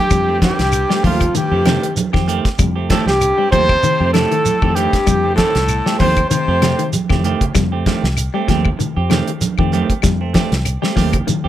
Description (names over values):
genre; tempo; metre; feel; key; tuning
afrobeat; 97 BPM; 4/4; swing 55% on 16ths; F mixolydian; A4 = 441 Hz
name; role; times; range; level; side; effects
breathy trumpet; melody; 0.0-6.9 s; F4 to C5; -18 LUFS; equal; none
bright alto saxophone; second line; 0.0-6.9 s; F4 to C5; -24 LUFS; right 4 dB; none
raspy baritone saxophone; second line; 0.0-6.9 s; F2 to C3; -26 LUFS; left 9 dB; none
clean electric guitar; arpeggios; 0.1-11.5 s; C3 to G3; -22 LUFS; left 9 dB; none
fingered electric bass; bass; 0.1-11.5 s; C2 to F2; -19 LUFS; equal; none
damped 70s drum kit; drums; 0.1-11.4 s; hi-hat, kick drum, snare drum; -19 LUFS; equal; none
claves; percussion; 0.1-11.3 s; none; -29 LUFS; left 16 dB; none
congas; percussion; 0.1-11.4 s; none; -23 LUFS; right 4 dB; none
shekere; percussion; 0.1-11.4 s; none; -24 LUFS; right 2 dB; none
clean electric guitar; stabs; 0.3-11.5 s; Eb3 to G4; -23 LUFS; right 7 dB; spring reverb
room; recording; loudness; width
moderate studio ambience, RT60 0.5 s; none; -13 LUFS; side -12 dB against mid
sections
0.0-11.5 A section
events
drum fill 6.9-7.5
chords
0.0 F9